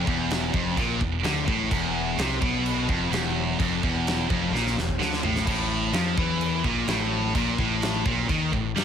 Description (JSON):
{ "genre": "heavy metal", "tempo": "128 BPM", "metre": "4/4", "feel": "straight", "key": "unclear", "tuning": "A4 = 441 Hz", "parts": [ { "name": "cranked stack guitar", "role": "riff", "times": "0.0-8.8 s", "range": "E2 to G3", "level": "-31 LUFS", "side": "equal", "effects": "overdrive" }, { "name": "heavy high-gain guitar", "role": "riff", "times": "0.0-8.8 s", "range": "E2 to G3", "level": "-28 LUFS", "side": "right 12 dB", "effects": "distortion" }, { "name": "sludgy distorted guitar", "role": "riff", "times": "0.0-8.8 s", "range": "E2 to G3", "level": "-29 LUFS", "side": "left 8 dB", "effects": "overdrive" }, { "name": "growling picked electric bass", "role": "bass", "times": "0.0-8.8 s", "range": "E1 to G2", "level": "-31 LUFS", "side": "equal", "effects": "overdrive" }, { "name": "big rock drum kit", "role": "drums", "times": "0.1-8.8 s", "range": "china cymbal, crash cymbal, kick drum, snare drum, toms", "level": "-28 LUFS", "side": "right 1 dB", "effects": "none" } ], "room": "small room ambience", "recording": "dense, heavily limited modern master", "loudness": "-22 LUFS", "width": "side -8 dB against mid", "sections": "0.0-8.8 A section", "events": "drum fill 4.5-5.5", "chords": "0.0 E5; 5.5 A5", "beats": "0.31 0.78 1.25 | 1.72 2.19 2.65 3.12 | 3.59 4.06 4.53 5.00 | 5.47 5.94 6.41 6.88 | 7.35 7.82 8.29 8.76" }